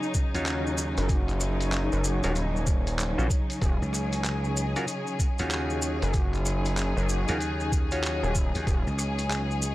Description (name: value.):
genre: glitch hop.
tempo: 95 BPM.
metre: 4/4.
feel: swing 63% on 16ths.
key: Eb minor.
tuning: A4 = 439 Hz.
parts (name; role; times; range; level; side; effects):
rich studio string section; sustained chords; 0.0-9.7 s; Db3 to Ab4; -32 LUFS; left 1 dB; sidechain pumping.
maracas; percussion; 0.0-9.7 s; none; -36 LUFS; left 1 dB; none.
granular cloud pad; texture; 0.0-9.7 s; Eb4 to Ab5; -37 LUFS; equal; built-in reverb, sidechain pumping.
electronic kick drum; drums; 0.1-8.8 s; none; -26 LUFS; equal; none.
mellow clav; stabs; 0.3-9.7 s; Db4 to Db5; -35 LUFS; equal; sidechain pumping, tape echo.
gritty slap bass; bass; 0.3-9.7 s; Db2 to Eb2; -30 LUFS; equal; overdrive.
boom bap sampler-style drum kit; drums; 0.3-9.5 s; handclaps, hi-hat, rim click; -34 LUFS; equal; none.
gritty driven synth bass; bass; 1.0-8.8 s; Eb1 to Bb1; -27 LUFS; equal; tube saturation.
room: little or no reverb.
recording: dry, gritty hardware recording, cassette tape.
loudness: -24 LUFS.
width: side -16 dB against mid.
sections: 0.0-9.7 A section.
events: none.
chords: 0.0 Ebm7.